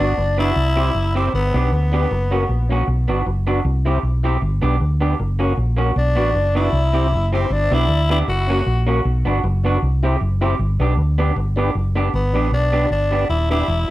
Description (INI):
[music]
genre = ska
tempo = 156 BPM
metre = 4/4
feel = swing 53% on 8ths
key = G major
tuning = A4 = 441 Hz
[part]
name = growling tenor saxophone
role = melody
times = 0.0-2.7, 6.0-8.8, 12.1-13.9 s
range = B3 to F#4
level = -22 LUFS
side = left 2 dB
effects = analog delay
[part]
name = electric guitar through a small old amp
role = accompaniment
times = 0.0-13.6 s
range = A#3 to G4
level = -24 LUFS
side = right 3 dB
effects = none
[part]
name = mellow tonewheel organ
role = stabs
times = 0.0-13.9 s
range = C#4 to C5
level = -27 LUFS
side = left 2 dB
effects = overdrive, slow rotary speaker
[part]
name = hollow-body short-scale fingered electric bass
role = bass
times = 0.0-13.9 s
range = Eb1 to D2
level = -18 LUFS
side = equal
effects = none
[sound]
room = moderate studio reverb, RT60 0.6 s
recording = dark, warm production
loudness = -16 LUFS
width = side -16 dB against mid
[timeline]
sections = 0.0-12.1 A section; 12.1-13.9 B section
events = none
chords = 0.0 Bm; 0.6 C; 1.3 G; 2.1 F#; 2.9 Bm; 3.6 C; 4.4 G; 5.2 F#; 6.0 Bm; 6.7 C; 7.5 G; 8.3 F#; 9.0 Bm; 9.8 C; 10.6 G